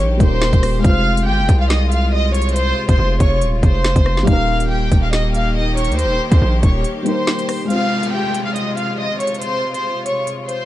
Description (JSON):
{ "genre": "hip hop, drill", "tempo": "140 BPM", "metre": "4/4", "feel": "half-time", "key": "F minor", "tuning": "A4 = 438 Hz", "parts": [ { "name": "dark concert grand piano", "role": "accompaniment", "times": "0.0-10.7 s", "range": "G3 to C5", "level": "-24 LUFS", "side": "left 2 dB", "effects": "low-pass filter" }, { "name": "clear studio string section", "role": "sustained chords", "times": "0.0-10.7 s", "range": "C3 to G4", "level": "-27 LUFS", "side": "left 2 dB", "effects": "none" }, { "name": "distorted 808-style bass", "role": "bass", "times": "0.0-6.8 s", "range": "Eb1 to Eb2", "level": "-17 LUFS", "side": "equal", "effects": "distortion" }, { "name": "warm studio violin section", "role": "melody", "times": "0.2-10.7 s", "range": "G4 to F6", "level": "-21 LUFS", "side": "equal", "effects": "low-pass filter" }, { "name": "drill drum kit", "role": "drums", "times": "0.2-10.6 s", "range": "hi-hat, kick drum, rim click, snare drum", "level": "-17 LUFS", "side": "equal", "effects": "vintage 12-bit sampler grit" }, { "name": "downlifter", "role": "sound effects", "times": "7.7-10.7 s", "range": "none", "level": "-30 LUFS", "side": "right 2 dB", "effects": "none" } ], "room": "small room ambience", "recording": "dark, warm production", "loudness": "-14 LUFS", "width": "side -14 dB against mid", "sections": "0.0-7.7 A section; 7.7-10.7 B section", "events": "break 6.8-7.7", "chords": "0.0 Eb; 0.8 Fm; 4.3 Eb; 7.7 Fm", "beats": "0.42 | 0.84 1.27 1.70 2.13 | 2.56 2.99 3.42 3.85 | 4.27 4.70 5.13 5.56 | 5.99 6.42 6.84 7.27 | 7.70 8.13 8.56 8.99 | 9.42 9.85 10.27" }